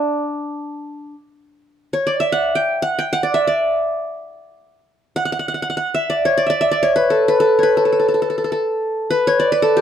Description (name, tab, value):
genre	turkish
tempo	free time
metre	none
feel	none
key	D makam rast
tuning	A4 = 441 Hz
part	qanun	solo	0.0-9.8 s	D4 to G5	-16 LUFS	equal	none
room	light reverb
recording	dark, warm production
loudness	-16 LUFS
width	side -9 dB against mid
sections	0.0-1.7 A section; 1.7-9.8 A section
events	none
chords	none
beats	free time